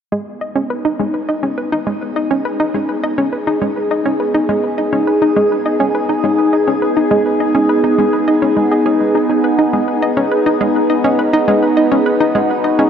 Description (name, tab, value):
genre	ambient, sequencer-driven space music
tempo	103 BPM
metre	4/4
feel	straight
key	G# minor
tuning	A4 = 439 Hz
part	phased analog pad	sustained chords	0.1-12.9 s	B3 to G#4	-15 LUFS	equal	phaser, chorus, shimmer reverb
part	hollow square pluck	riff	0.1-12.9 s	G#3 to D#5	-17 LUFS	equal	chorus, tape echo, shimmer reverb
room	wet huge ambient reverb, RT60 7.3 s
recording	dreamy mix soaked in reverb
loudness	-13 LUFS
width	side -8 dB against mid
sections	0.1-12.9 A section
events	none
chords	0.1 G#m